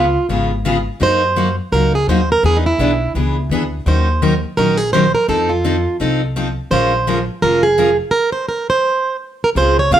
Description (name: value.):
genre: acoustic string swing (jazz manouche).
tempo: 169 BPM.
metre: 4/4.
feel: swing 60% on 8ths.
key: Bb minor.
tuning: A4 = 440 Hz.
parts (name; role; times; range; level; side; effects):
picked plugged-in steel-string acoustic guitar; melody; 0.0-10.0 s; Eb4 to F5; -15 LUFS; right 3 dB; plate reverb.
picked steel-string acoustic guitar; accompaniment; 0.0-10.0 s; Db3 to Bb4; -18 LUFS; left 2 dB; none.
upright bass; bass; 0.0-10.0 s; F1 to Gb2; -19 LUFS; equal; none.
room: moderate studio reverb, RT60 0.7 s.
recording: none.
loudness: -14 LUFS.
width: side -10 dB against mid.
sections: 0.0-9.6 A section.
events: stop 8.1-9.6.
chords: 0.0 Db7; 1.0 Gb6; 2.4 E7; 3.9 Ebm7; 5.3 F7; 6.7 Bbm7; 8.1 N.C..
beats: 0.30 0.65 | 1.01 1.37 1.73 2.08 | 2.44 2.79 3.15 3.51 | 3.86 4.22 4.58 4.93 | 5.29 5.64 6.00 6.35 | 6.71 7.07 7.42 7.78 | 8.13 8.49 8.84 9.20 | 9.55 9.91.